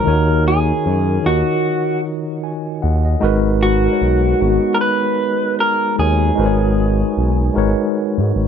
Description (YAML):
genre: R&B, neo-soul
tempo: 76 BPM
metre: 4/4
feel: swing 55% on 16ths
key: G# minor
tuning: A4 = 440 Hz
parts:
  - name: electric guitar through a small old amp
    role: melody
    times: 0.0-8.5 s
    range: F#4 to B4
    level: -19 LUFS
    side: equal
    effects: none
  - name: mellow tine electric piano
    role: accompaniment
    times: 0.0-8.5 s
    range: D#3 to G#5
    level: -18 LUFS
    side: left 1 dB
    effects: medium stereo tremolo
  - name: smooth gliding synth bass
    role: bass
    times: 0.1-8.5 s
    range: G#1 to G#2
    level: -17 LUFS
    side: equal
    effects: none
room: little or no reverb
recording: dark, warm production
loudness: -14 LUFS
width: side -8 dB against mid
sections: 0.0-8.5 A section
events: none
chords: 0.1 D#m7; 3.2 G#m11